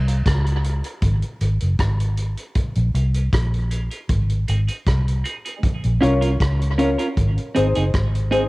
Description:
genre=dub reggae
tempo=78 BPM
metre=4/4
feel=straight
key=Bb minor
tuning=A4 = 439 Hz
part: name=vintage muted fingered electric bass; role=bass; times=0.0-8.5 s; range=Gb1 to Db2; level=-19 LUFS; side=equal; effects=tube saturation
part: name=clean electric guitar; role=accompaniment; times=0.1-8.4 s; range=C4 to Bb4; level=-26 LUFS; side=right 3 dB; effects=high-pass filter, low-pass filter, cassette tape, tape echo
part: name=vintage drum kit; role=drums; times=0.1-8.5 s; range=hi-hat, kick drum, rim click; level=-24 LUFS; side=equal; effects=cassette tape
part: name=congas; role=percussion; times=1.0-5.8 s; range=none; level=-34 LUFS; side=right 4 dB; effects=high-pass filter on perc, tape echo
part: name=dark concert grand piano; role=stabs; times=6.0-8.5 s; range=C4 to Db5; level=-22 LUFS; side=left 2 dB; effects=high-pass filter, low-pass filter, cassette tape, tape echo
room=light reverb, small room reverb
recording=home recording on cassette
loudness=-18 LUFS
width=side -22 dB against mid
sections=0.0-8.5 A section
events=break 0.0-5.6; filter sweep 0.0-5.6; part muted 5.6-8.5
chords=0.0 Bbm; 1.0 Ab; 2.6 Bbm; 4.1 Ab; 5.6 Bbm; 7.2 Ab

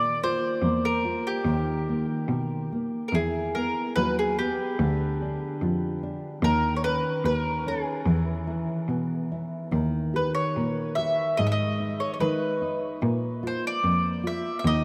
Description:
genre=fado-style ballad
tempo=73 BPM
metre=2/4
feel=rubato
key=unclear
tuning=A4 = 441 Hz
part: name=mandolin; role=melody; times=0.0-14.8 s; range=G4 to E5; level=-30 LUFS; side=equal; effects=none
part: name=nylon-string guitar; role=accompaniment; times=0.0-14.8 s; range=D3 to A#4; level=-32 LUFS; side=equal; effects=none
part: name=rich cello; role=bass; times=0.0-14.8 s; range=D2 to D#3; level=-30 LUFS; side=equal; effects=none
room=wet cathedral reverb, RT60 6.0 s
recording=in a vast, echoing space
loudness=-27 LUFS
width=mono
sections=0.0-14.8 A section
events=none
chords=0.0 A#5; 1.5 D#5; 3.1 Esus2; 4.8 Dmadd11; 6.4 D#7; 8.1 E; 9.7 D#; 11.4 G#5; 13.0 A#5

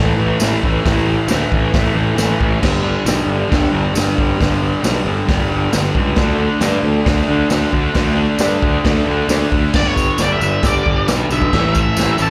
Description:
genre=garage rock duo or trio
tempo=135 BPM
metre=4/4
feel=straight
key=unclear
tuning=A4 = 440 Hz
part: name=fuzz guitar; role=riff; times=0.0-12.3 s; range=G2 to D4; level=-21 LUFS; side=equal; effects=distortion, slapback echo
part: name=fuzz picked electric bass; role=bass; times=0.0-12.3 s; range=G1 to G2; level=-20 LUFS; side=equal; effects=overdrive
part: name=vintage drum kit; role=drums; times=0.4-12.1 s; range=crash cymbal, hi-hat, kick drum, snare drum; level=-21 LUFS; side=equal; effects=none
part: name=tambourine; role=percussion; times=0.4-12.3 s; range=none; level=-31 LUFS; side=equal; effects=none
part: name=octave-fuzz lead guitar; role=melody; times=9.8-12.3 s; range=C#5 to A5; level=-22 LUFS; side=equal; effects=distortion, slapback echo
room=small room ambience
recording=live gig heard through the venue's PA, club reverb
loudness=-16 LUFS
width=mono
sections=0.0-9.7 A section; 9.7-12.3 B section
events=none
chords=0.0 A5; 2.6 G5; 6.2 D5; 9.7 G; 11.5 A5

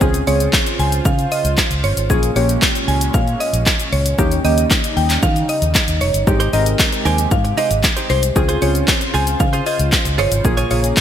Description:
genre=dance-pop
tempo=115 BPM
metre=4/4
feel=straight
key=unclear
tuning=A4 = 441 Hz
part: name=warm analog keys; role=accompaniment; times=0.0-11.0 s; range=Ab3 to Bb4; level=-22 LUFS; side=left 1 dB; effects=chorus
part: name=warm analog pad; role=sustained chords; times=0.0-11.0 s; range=Bb2 to C5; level=-27 LUFS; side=right 3 dB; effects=lush chorus, sidechain pumping
part: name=vintage muted fingered electric bass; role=bass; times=0.0-10.9 s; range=F1 to Eb3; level=-19 LUFS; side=equal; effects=sidechain pumping
part: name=punchy analog drum machine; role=drums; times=0.0-11.0 s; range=handclaps, hi-hat, kick drum, shaker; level=-18 LUFS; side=equal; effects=gated reverb
part: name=mallet-like synth pluck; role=melody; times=0.3-10.8 s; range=C5 to Ab5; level=-21 LUFS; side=equal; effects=chorus, sidechain pumping, ping-pong delay
part: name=direct-recorded clean electric guitar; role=riff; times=6.3-11.0 s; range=Eb4 to Db5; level=-26 LUFS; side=right 6 dB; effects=wide subtle chorus
room=light reverb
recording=bright 1980s-style digital production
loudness=-14 LUFS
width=side -10 dB against mid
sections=0.0-11.0 A section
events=none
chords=0.0 Dbmaj7; 2.1 Bbm7; 4.2 Eb7; 6.3 Abmaj7; 8.4 Dbmaj7; 10.4 Bbm7

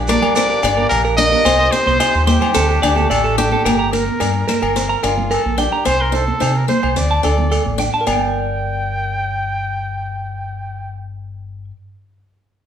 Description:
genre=highlife guitar band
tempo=109 BPM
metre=4/4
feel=straight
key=G minor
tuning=A4 = 440 Hz
part: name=accordion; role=sustained chords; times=0.0-3.6 s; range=A3 to G4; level=-28 LUFS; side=right 1 dB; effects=light tremolo tuning
part: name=deep dub fingered electric bass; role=bass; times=0.0-11.7 s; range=G1 to C3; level=-21 LUFS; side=equal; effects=none
part: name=breathy trumpet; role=melody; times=0.1-11.0 s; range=F4 to G5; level=-20 LUFS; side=equal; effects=none
part: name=picked swing-style acoustic guitar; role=accompaniment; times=0.1-8.2 s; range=G3 to Eb4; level=-22 LUFS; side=left 3 dB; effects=none
part: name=clean electric guitar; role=arpeggios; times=0.1-11.8 s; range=A4 to C6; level=-20 LUFS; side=right 4 dB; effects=spring reverb
part: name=congas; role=percussion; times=0.1-8.3 s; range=none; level=-28 LUFS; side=right 5 dB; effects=none
part: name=maracas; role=percussion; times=0.1-8.3 s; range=none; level=-30 LUFS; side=right 2 dB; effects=none
part: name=agogo bells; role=percussion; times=0.2-8.2 s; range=none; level=-23 LUFS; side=left 5 dB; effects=none
room=wet large studio reverb, RT60 1.2 s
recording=band playing live in one room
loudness=-14 LUFS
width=side -8 dB against mid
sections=0.0-3.7 A section; 3.7-8.1 B section; 8.1-10.3 C section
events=none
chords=0.0 Gm; 1.5 Cm; 2.6 Dsus4; 3.7 Gm; 5.9 Cm; 7.0 D5; 8.1 Gm

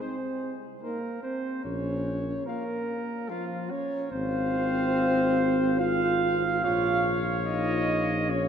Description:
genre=classical, brass quintet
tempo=73 BPM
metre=3/4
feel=rubato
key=F minor from 4.1 s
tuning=A4 = 440 Hz
part: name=mellow cornet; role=melody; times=0.0-8.5 s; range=C5 to F5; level=-36 LUFS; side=left 6 dB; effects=none
part: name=warm flugelhorn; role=second line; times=0.0-8.5 s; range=F4 to F5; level=-31 LUFS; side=right 4 dB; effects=none
part: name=dark euphonium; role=accompaniment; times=0.0-8.5 s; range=F3 to F4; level=-28 LUFS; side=right 1 dB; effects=none
part: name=mellow French horn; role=accompaniment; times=0.0-8.5 s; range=Eb4 to F4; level=-39 LUFS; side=left 6 dB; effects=none
part: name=mellow tuba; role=bass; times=1.7-8.5 s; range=Ab1 to Bb1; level=-33 LUFS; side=left 2 dB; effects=none
room=wet cathedral reverb, RT60 5.6 s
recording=in a vast, echoing space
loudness=-25 LUFS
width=side -8 dB against mid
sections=0.0-8.5 A section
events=none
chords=0.0 Ab/C (rootless); 1.6 Bbm; 4.1 Fm/Ab; 6.6 Bbm

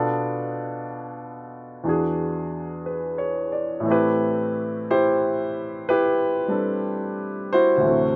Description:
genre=jazz ballad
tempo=60 BPM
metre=4/4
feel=swing 66% on 8ths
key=unclear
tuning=A4 = 442 Hz
part: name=clear grand piano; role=solo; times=0.0-8.2 s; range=D2 to D5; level=-21 LUFS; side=equal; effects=none
room=little or no reverb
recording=recorded outdoors, with no room sound, nothing above 10.3 kHz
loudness=-21 LUFS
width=side -29 dB against mid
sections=0.0-8.2 A section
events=none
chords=0.0 Bm7b5; 1.9 E7; 3.8 Am9

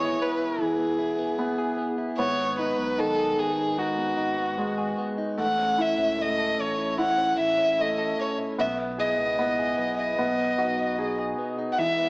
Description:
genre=pop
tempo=75 BPM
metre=4/4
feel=straight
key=E major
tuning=A4 = 440 Hz
part: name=warm violin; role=melody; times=0.0-12.1 s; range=F#4 to F#5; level=-25 LUFS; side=equal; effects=none
part: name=clear concert grand piano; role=accompaniment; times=0.0-12.1 s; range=D#3 to G#4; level=-28 LUFS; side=equal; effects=none
part: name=direct-recorded clean electric guitar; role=arpeggios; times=0.0-12.1 s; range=G#2 to A4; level=-33 LUFS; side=left 1 dB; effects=harmonic tremolo, tape echo
part: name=warm sub bass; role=bass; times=0.0-12.1 s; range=E1 to C#2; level=-43 LUFS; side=equal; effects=none
room=wet concert hall reverb, RT60 2.0 s, small room ambience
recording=worn, warbling old tape, cassette tape, warbly pitch drift, small speaker sound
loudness=-23 LUFS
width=side -27 dB against mid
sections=0.0-12.1 A section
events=none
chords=0.0 E; 2.2 G#m; 5.4 A; 8.6 E/B; 10.2 B6

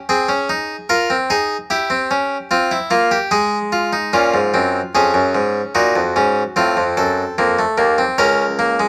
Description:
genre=classical, baroque-style 4-part fugue for harpsichord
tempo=74 BPM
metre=3/4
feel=straight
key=Bb minor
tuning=A4 = 440 Hz
part: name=harpsichord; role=solo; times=0.1-8.9 s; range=Db2 to Bb4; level=-17 LUFS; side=equal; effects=none
room=light reverb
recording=dark, warm production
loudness=-17 LUFS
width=mono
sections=0.0-4.1 A section; 4.1-8.9 B section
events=none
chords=0.0 Fm (rootless); 1.7 C7; 3.3 Fm/Ab; 4.1 Bbm; 6.6 F7; 8.2 Bbm/Db

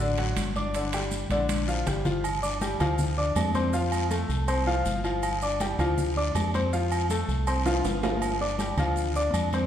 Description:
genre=latin, salsa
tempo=160 BPM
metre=4/4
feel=straight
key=unclear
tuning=A4 = 440 Hz
part: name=bright upright piano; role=accompaniment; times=0.0-9.7 s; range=D3 to D6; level=-28 LUFS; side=left 2 dB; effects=none
part: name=deep dub fingered electric bass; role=bass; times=0.0-9.7 s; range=G1 to F2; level=-29 LUFS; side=right 1 dB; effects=none
part: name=congas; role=percussion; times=0.0-9.7 s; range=none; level=-34 LUFS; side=left 1 dB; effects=none
part: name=timbales and agogo bells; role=percussion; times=0.2-9.7 s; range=none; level=-33 LUFS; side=right 3 dB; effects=none
part: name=guiro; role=percussion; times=0.4-9.7 s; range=none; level=-40 LUFS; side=left 4 dB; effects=none
part: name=maracas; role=percussion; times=0.4-9.7 s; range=none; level=-43 LUFS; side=right 7 dB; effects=none
room=wet recital hall reverb, RT60 1.6 s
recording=recorded in a church or concert hall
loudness=-24 LUFS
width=side -10 dB against mid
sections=0.0-2.2 A section; 2.2-9.7 B section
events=drum fill 1.3-2.2, 7.7-8.2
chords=0.0 D; 0.7 Gm7; 2.2 G5; 3.7 Fadd9; 5.2 G5; 6.7 Fadd9; 8.2 G5

